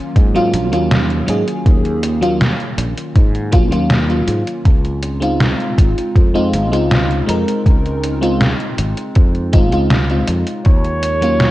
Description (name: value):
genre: vaporwave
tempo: 80 BPM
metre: 4/4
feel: straight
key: Db major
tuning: A4 = 440 Hz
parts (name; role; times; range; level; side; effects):
- FM electric piano with soft pad layer; accompaniment; 0.0-11.5 s; Gb3 to Bb4; -18 LUFS; equal; analog chorus, cassette tape, tape echo
- warbly tape-like pad; sustained chords; 0.0-11.5 s; Db3 to F4; -28 LUFS; equal; none
- sustaining fretless electric bass; bass; 0.2-11.5 s; Ab1 to Ab2; -19 LUFS; equal; tube saturation, lush chorus
- detuned 8-bit digital drum machine; drums; 0.2-11.5 s; hi-hat, snare drum; -18 LUFS; equal; overdrive, vintage 12-bit sampler grit, gated reverb
- electronic kick drum; drums; 0.2-10.8 s; none; -11 LUFS; equal; overdrive, vintage 12-bit sampler grit
- breathy flugelhorn; melody; 10.7-11.5 s; Db5; -18 LUFS; right 1 dB; vintage 12-bit sampler grit
room: light reverb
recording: cassette tape, nothing above 10.6 kHz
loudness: -13 LUFS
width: side -16 dB against mid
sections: 0.0-11.5 A section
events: none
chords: 0.0 Ebm9; 4.7 Dbmaj9; 10.7 Ebm9